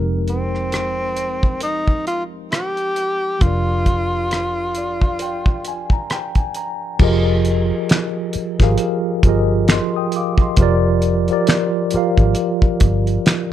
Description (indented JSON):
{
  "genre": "R&B, neo-soul",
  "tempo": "67 BPM",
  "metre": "4/4",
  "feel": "swing 57% on 16ths",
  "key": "F dorian",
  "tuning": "A4 = 440 Hz",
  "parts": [
    { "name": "mellow tine electric piano", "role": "accompaniment", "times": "0.0-13.5 s", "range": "F3 to Eb6", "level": "-20 LUFS", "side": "equal", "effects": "medium stereo tremolo" },
    { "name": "vintage muted fingered electric bass", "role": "bass", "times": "0.0-13.2 s", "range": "F1 to Ab1", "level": "-20 LUFS", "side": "equal", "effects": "none" },
    { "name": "warm tenor saxophone", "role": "melody", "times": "0.3-6.1 s", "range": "C4 to G4", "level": "-22 LUFS", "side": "equal", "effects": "none" },
    { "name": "cloth-damped thuddy drum kit", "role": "drums", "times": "0.3-13.5 s", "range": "crash cymbal, finger snaps, hi-hat, kick drum, rim click, snare drum", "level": "-16 LUFS", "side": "equal", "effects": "none" }
  ],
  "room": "light reverb",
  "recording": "dark, warm production",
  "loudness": "-16 LUFS",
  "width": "side -11 dB against mid",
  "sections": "0.0-7.0 A section; 7.0-13.5 B section",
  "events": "tine electric piano fill 4.3-7.0",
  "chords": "0.0 Fm11; 3.4 Gm7/F; 7.0 Fm11"
}